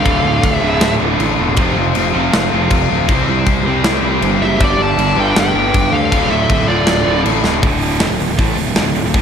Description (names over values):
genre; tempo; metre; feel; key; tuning
heavy metal; 158 BPM; 4/4; straight; D minor; A4 = 438 Hz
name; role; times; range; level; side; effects
high-gain lead guitar; melody; 0.0-0.9, 4.4-7.2 s; D5 to A5; -19 LUFS; right 1 dB; distortion, slapback echo, analog delay
high-gain lead guitar; second line; 0.0-0.9, 4.5-7.2 s; F4 to D5; -24 LUFS; equal; distortion, slapback echo
high-gain distorted guitar; riff; 0.0-9.2 s; D2 to C5; -21 LUFS; left 11 dB; distortion, slapback echo
scooped high-gain guitar; riff; 0.0-9.2 s; D2 to C4; -20 LUFS; right 8 dB; distortion, slapback echo
tight distorted guitar; riff; 0.0-7.6 s; D2 to C4; -20 LUFS; left 1 dB; distortion, slapback echo
fuzz picked electric bass; bass; 0.1-9.2 s; D1 to D2; -19 LUFS; equal; overdrive
tight metal drum kit; drums; 0.1-9.2 s; crash cymbal, hi-hat, kick drum, snare drum; -17 LUFS; equal; none
room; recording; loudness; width
moderate recital hall reverb, RT60 1.6 s, small room ambience; big arena sound; -12 LUFS; side -7 dB against mid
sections
0.0-7.6 A section; 7.6-9.2 B section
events
half time 0.0-7.6; drum fill 7.4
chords
0.0 Dm; 1.6 F5; 3.1 C5; 4.6 G; 6.1 Dm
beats
| 0.05 0.43 0.81 1.19 | 1.57 1.95 2.32 2.70 | 3.08 3.46 3.84 4.22 | 4.60 4.98 5.36 5.73 | 6.11 6.49 6.87 7.25 | 7.62 8.00 8.38 8.76 | 9.14